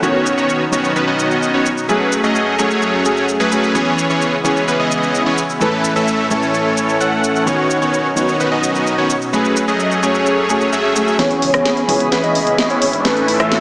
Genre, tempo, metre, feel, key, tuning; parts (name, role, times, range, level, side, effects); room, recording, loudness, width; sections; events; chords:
EDM, festival progressive house; 129 BPM; 4/4; straight; C# minor; A4 = 440 Hz
dark grand piano; accompaniment; 0.0-13.6 s; A2 to A4; -21 LUFS; equal; tape echo
lush unison pad; sustained chords; 0.0-13.6 s; F#2 to C#6; -22 LUFS; equal; chorus, phaser
supersaw chords; riff; 0.0-13.6 s; D#3 to F#5; -15 LUFS; equal; low-pass filter, tape echo
house drum kit; drums; 0.0-13.6 s; hi-hat, rim click, shaker, snare drum; -22 LUFS; equal
wide unison lead; arpeggios; 11.2-13.6 s; B4 to E5; -18 LUFS; equal; tape echo
riser; sound effects; 12.3-13.6 s; -25 LUFS; equal
wide detuned saw bass; bass; 11.4-13.5 s; G#1 to C#2; -31 LUFS; equal; chorus
moderate lush hall reverb, RT60 2.3 s; heavily compressed radio sound, multiband compression, small speaker sound; -13 LUFS; side -24 dB against mid
0.0-11.2 A section; 11.2-13.6 B section
build-up 11.2-13.6; drum fill 11.2-13.6; filter sweep on analog synth lead 11.2-13.6; riser 12.3-13.6
0.0 Badd9; 1.9 F#madd9; 3.7 C#m7; 5.6 A; 7.5 Badd9; 9.3 F#madd9; 11.2 C#m7; 13.1 A